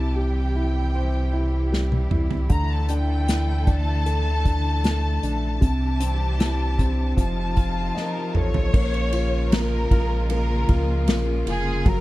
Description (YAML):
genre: pop ballad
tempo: 77 BPM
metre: 4/4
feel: straight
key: F major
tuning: A4 = 439 Hz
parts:
  - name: warm studio violin section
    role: melody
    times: 0.0-12.0 s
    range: G#4 to Bb5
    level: -30 LUFS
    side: left 1 dB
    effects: none
  - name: warm grand piano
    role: accompaniment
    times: 0.0-12.0 s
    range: C3 to Eb5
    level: -28 LUFS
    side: left 1 dB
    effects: none
  - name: rich studio string section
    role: sustained chords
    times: 0.0-12.0 s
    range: C3 to A4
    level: -31 LUFS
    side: right 1 dB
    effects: none
  - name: warm sub bass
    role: bass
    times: 0.0-12.0 s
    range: F1 to D2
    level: -23 LUFS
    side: equal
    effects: none
  - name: unplugged drum kit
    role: drums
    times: 1.7-12.0 s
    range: crash cymbal, hi-hat, kick drum, ride cymbal, snare drum, toms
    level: -22 LUFS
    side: equal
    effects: none
room: small room ambience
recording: dark, warm production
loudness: -20 LUFS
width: side -17 dB against mid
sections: 0.0-8.7 A section; 8.7-12.0 B section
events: drum fill 1.7-2.5, 8.0-8.7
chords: 0.0 C; 2.5 Dsus2; 5.6 Cadd9; 7.2 F7; 8.7 A#m7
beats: 0.17 0.95 1.73 | 2.50 3.28 4.06 4.84 | 5.62 6.40 7.18 7.96 | 8.74 9.52 10.30 11.08 | 11.86